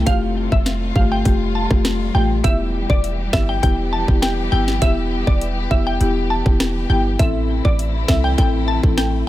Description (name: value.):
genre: dancehall.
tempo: 101 BPM.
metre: 4/4.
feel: straight.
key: E phrygian.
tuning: A4 = 442 Hz.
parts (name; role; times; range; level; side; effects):
warm studio string section; sustained chords; 0.0-9.3 s; C3 to G4; -29 LUFS; left 2 dB; sidechain pumping.
warm 808-style bass; bass; 0.0-9.2 s; E1 to C2; -20 LUFS; equal; none.
glassy wavetable pluck; melody; 0.1-9.1 s; D5 to A5; -24 LUFS; equal; chorus, ping-pong delay.
marimba with medium mallets; accompaniment; 0.1-9.0 s; A3 to A4; -23 LUFS; left 3 dB; none.
island pop drum kit; drums; 0.1-9.1 s; hi-hat, kick drum, rim click, snare drum; -18 LUFS; equal; none.
room: little or no reverb.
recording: none.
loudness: -16 LUFS.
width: side -15 dB against mid.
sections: 0.0-9.3 A section.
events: none.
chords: 0.1 Fadd9; 2.4 Em; 7.2 Am.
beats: | 0.07 0.66 1.25 1.85 | 2.44 3.04 3.63 4.22 | 4.82 5.41 6.01 6.60 | 7.20 7.79 8.38 8.98.